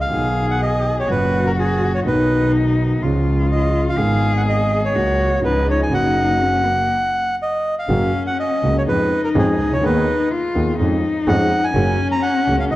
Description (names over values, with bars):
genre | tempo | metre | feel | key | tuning
tango | 124 BPM | 4/4 | rubato | F# major | A4 = 440 Hz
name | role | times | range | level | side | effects
bandoneon | melody | 0.0-12.8 s | G#4 to A#5 | -20 LUFS | equal | none
warm concert grand piano | accompaniment | 0.0-12.8 s | G#1 to G#4 | -21 LUFS | right 1 dB | none
warm cello | second line | 0.1-12.8 s | A#3 to G#4 | -22 LUFS | left 3 dB | none
clear double bass | bass | 0.1-12.8 s | F#1 to E#2 | -22 LUFS | equal | none
room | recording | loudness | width
moderate concert hall reverb, RT60 2.1 s | worn, warbling old tape, cassette tape, warbly pitch drift | -16 LUFS | side -16 dB against mid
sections
0.0-7.9 A section; 7.9-12.8 A section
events
stop 6.9-7.9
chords
0.1 B; 1.1 F#; 2.1 B; 3.0 C#; 4.0 G#m; 5.0 F#/C#; 5.4 C#add9; 5.9 F#; 8.9 C#/E#; 9.8 G#madd9/D#; 10.8 C#/E#; 11.7 F#add9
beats
| 0.11 0.60 1.09 1.58 | 2.06 2.55 3.03 3.51 | 3.99 4.47 4.95 5.43 | 5.92 6.40 6.89 7.39 | 7.88 8.37 8.87 9.35 | 9.83 10.31 10.79 11.27 | 11.75 12.22 12.71